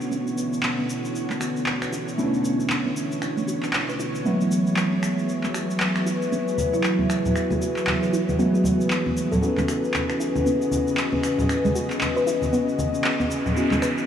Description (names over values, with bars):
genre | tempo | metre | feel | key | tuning
deep house | 116 BPM | 4/4 | swing 59% on 16ths | unclear | A4 = 440 Hz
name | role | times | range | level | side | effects
soft string machine | sustained chords | 0.0-14.1 s | B2 to D#5 | -29 LUFS | equal | ensemble chorus
tine electric piano | stabs | 0.0-14.1 s | E3 to F#4 | -26 LUFS | right 1 dB | fast stereo tremolo, digital delay
electronic shaker, handclaps and finger snaps | drums | 0.0-14.1 s | none | -29 LUFS | equal | none
warbly tape-like pad | texture | 0.0-14.1 s | B3 to E5 | -29 LUFS | left 3 dB | chorus, built-in reverb
soft round pluck | arpeggios | 0.1-13.9 s | G#3 to B4 | -30 LUFS | right 1 dB | chorus, digital delay
congas | percussion | 6.6-13.8 s | none | -28 LUFS | equal | none
kalimba | melody | 6.7-9.5 s | E4 to A4 | -31 LUFS | right 2 dB | digital delay
noise sweep | sound effects | 13.0-14.1 s | none | -32 LUFS | right 1 dB | none
room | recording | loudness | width
wet lush hall reverb, RT60 3.1 s | vinyl crackle, small room ambience | -21 LUFS | side -9 dB against mid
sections
0.0-14.1 A section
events
filter sweep on synth arpeggio sound 0.0-14.1; noise sweep 13.0-14.1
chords
0.0 Bm11; 4.3 F#m11; 9.4 C#m11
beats
| 0.11 0.63 1.15 1.67 | 2.18 2.70 3.22 3.73 | 4.25 4.77 5.29 5.80 | 6.32 6.84 7.36 7.87 | 8.39 8.91 9.43 9.94 | 10.46 10.98 11.49 12.01 | 12.53 13.04 13.56